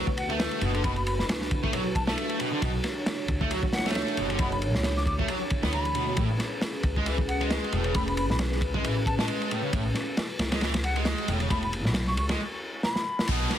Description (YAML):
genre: breakbeat, breaks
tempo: 135 BPM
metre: 4/4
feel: swing 56% on 16ths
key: unclear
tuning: A4 = 443 Hz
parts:
  - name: dark analog pad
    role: sustained chords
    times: 0.0-13.6 s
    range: A3 to C#5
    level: -34 LUFS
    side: equal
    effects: chorus, sidechain pumping
  - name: fuzz guitar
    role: riff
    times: 0.0-13.6 s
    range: A2 to B3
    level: -32 LUFS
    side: right 1 dB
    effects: distortion, tube saturation, ping-pong delay
  - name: upright bass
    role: bass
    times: 0.0-13.4 s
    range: E1 to D2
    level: -30 LUFS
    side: equal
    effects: none
  - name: crunchy breakbeat drum kit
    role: drums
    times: 0.1-13.6 s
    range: kick drum, ride cymbal, snare drum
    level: -29 LUFS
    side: equal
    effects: none
  - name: silver concert flute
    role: melody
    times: 0.2-13.3 s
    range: F#5 to D6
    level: -34 LUFS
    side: left 1 dB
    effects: small speaker sound, ping-pong delay
  - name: downlifter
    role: sound effects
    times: 13.3-13.6 s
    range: none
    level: -32 LUFS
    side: left 4 dB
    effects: none
room: light reverb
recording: heavily compressed radio sound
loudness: -25 LUFS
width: side -10 dB against mid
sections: 0.0-13.3 A section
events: break 12.4-13.3; drum fill 12.8-13.3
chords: 0.0 Bm7; 6.2 Amaj9